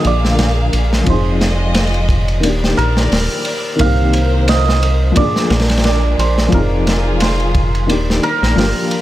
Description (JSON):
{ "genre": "trip hop", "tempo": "88 BPM", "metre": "4/4", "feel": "swing 56% on 16ths", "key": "unclear", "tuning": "A4 = 440 Hz", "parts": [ { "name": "hammered dulcimer", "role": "melody", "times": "0.0-9.0 s", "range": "Bb4 to G5", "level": "-21 LUFS", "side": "right 4 dB", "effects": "tape echo" }, { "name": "dark upright piano", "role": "accompaniment", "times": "0.0-9.0 s", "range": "D3 to Ab4", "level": "-20 LUFS", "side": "left 2 dB", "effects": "tremolo" }, { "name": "dark studio violin section", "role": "sustained chords", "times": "0.0-9.0 s", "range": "G3 to F5", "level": "-23 LUFS", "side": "left 1 dB", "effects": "none" }, { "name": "crunchy breakbeat drum kit", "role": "drums", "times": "0.0-9.0 s", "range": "hi-hat, kick drum, ride cymbal, snare drum", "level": "-18 LUFS", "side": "equal", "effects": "none" }, { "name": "round analog bass", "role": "bass", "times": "0.1-8.7 s", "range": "Eb1 to C2", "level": "-16 LUFS", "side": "equal", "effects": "none" } ], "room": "small room ambience", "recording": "none", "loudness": "-12 LUFS", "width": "side -14 dB against mid", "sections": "0.0-9.0 A section", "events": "none", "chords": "0.0 Bb7; 1.1 Fm7; 2.4 Ebmaj7; 3.8 Cm7; 5.2 Bb7; 6.5 Fm7; 7.9 Ebmaj7" }